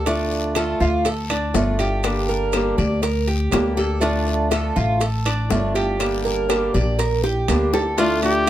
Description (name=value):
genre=latin, Cuban son and guajira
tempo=121 BPM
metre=4/4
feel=straight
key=D minor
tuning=A4 = 440 Hz
part: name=fingerpicked swing-style acoustic guitar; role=accompaniment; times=0.0-8.5 s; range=D3 to G4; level=-23 LUFS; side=equal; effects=none
part: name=Cuban tres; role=arpeggios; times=0.0-8.5 s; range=D4 to D5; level=-24 LUFS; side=right 3 dB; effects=none
part: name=upright bass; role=bass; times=0.0-8.5 s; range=G1 to D2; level=-23 LUFS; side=left 1 dB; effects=none
part: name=bongos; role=percussion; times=0.1-8.5 s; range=none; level=-27 LUFS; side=left 6 dB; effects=none
part: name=guiro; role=percussion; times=0.1-8.5 s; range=none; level=-37 LUFS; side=left 6 dB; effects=none
part: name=maracas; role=percussion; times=0.1-8.5 s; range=none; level=-36 LUFS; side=right 6 dB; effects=none
part: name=timbales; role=percussion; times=0.1-8.5 s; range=none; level=-28 LUFS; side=right 4 dB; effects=none
part: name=claves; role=percussion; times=0.6-7.7 s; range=none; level=-35 LUFS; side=left 5 dB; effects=none
part: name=clear trumpet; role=melody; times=8.0-8.5 s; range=F4 to G4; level=-19 LUFS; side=equal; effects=none
part: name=nylon-string guitar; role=second line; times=8.0-8.5 s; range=A3 to D4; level=-25 LUFS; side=left 5 dB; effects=none
room=light reverb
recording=none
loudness=-18 LUFS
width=side -12 dB against mid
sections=0.0-8.0 A section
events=drum fill 7.2-8.0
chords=0.1 Dm; 2.0 Gm; 4.0 Dm; 6.0 Gm; 8.0 Dm